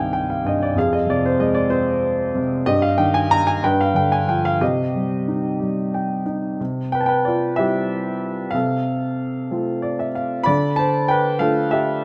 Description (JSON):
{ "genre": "classical, lyrical solo piano", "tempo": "62 BPM (dotted quarters)", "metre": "6/8", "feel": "rubato", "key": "C minor, C major from 6.6 s", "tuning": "A4 = 436 Hz", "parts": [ { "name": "warm grand piano", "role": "solo", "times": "0.0-12.0 s", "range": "C2 to B5", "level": "-20 LUFS", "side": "equal", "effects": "none" } ], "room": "light reverb", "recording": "close, detailed microphones", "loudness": "-20 LUFS", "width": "mono", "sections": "0.0-6.6 A section; 6.6-12.0 B section", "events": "grand piano fill 5.6-6.6, 9.5-10.5", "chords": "0.0 Cm; 0.8 Fm; 2.7 Fm11/G; 3.6 G7; 4.6 Cm; 6.6 C; 8.5 F/C; 10.5 Dm", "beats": "| 0.76 1.70 | 2.66 3.63 | 4.61 5.60 | 6.60 7.58 | 8.54 9.50 | 10.46 11.40" }